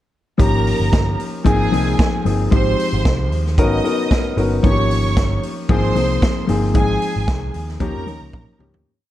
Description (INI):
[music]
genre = disco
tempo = 113 BPM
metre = 4/4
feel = straight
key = unclear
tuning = A4 = 440 Hz
[part]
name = clear studio string section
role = second line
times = 0.4-8.6 s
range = Ab4 to D#6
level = -24 LUFS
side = right 3 dB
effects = none
[part]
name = clear grand piano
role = accompaniment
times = 0.4-8.9 s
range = F3 to A#4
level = -20 LUFS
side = left 3 dB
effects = none
[part]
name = picked electric bass with an envelope filter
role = bass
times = 0.4-8.8 s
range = G1 to F2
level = -20 LUFS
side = right 1 dB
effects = none
[part]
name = vintage drum kit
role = drums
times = 0.4-8.9 s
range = hi-hat, kick drum, snare drum, toms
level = -19 LUFS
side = right 1 dB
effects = none
[sound]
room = light reverb, studio reverb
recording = dark, warm production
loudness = -15 LUFS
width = side -13 dB against mid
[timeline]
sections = 0.4-8.9 verse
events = fade-out 6.8-8.9; drum fill 8.3-8.9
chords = 0.4 Eb7; 1.5 Ab6; 2.5 Fm7/Ab; 3.6 Bmaj7/Ab; 4.6 Eb7; 5.7 Ab6; 6.8 Fm7/Ab; 7.8 Eb7